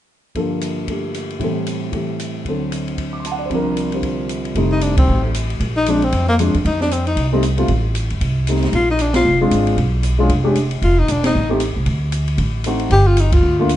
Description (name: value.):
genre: jazz, small-group swing and bop.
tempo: 230 BPM.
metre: 4/4.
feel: swing 60% on 8ths.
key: F mixolydian.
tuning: A4 = 440 Hz.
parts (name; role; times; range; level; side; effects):
warm concert grand piano; accompaniment; 0.3-13.7 s; C2 to D6; -20 LUFS; left 1 dB; none.
open jazz drum kit; drums; 0.3-13.8 s; hi-hat, kick drum, ride cymbal, snare drum; -24 LUFS; equal; none.
upright bass; bass; 4.6-13.8 s; E1 to F2; -18 LUFS; right 1 dB; none.
warm tenor saxophone; melody; 4.7-13.6 s; A3 to G4; -18 LUFS; left 2 dB; none.
room: light reverb.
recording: nothing above 10.4 kHz.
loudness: -15 LUFS.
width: side -13 dB against mid.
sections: 0.4-4.6 A section; 4.6-13.8 B section.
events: band accent 5.0, 9.1, 11.2, 13.3.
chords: 0.4 Gm9; 1.4 Am7; 2.5 D7; 3.5 C7sus4; 4.6 F7; 5.6 Bb7; 6.6 F7; 8.7 Bb7; 9.8 Bdim7; 10.8 F7; 11.9 D7b9; 12.9 G7(no3).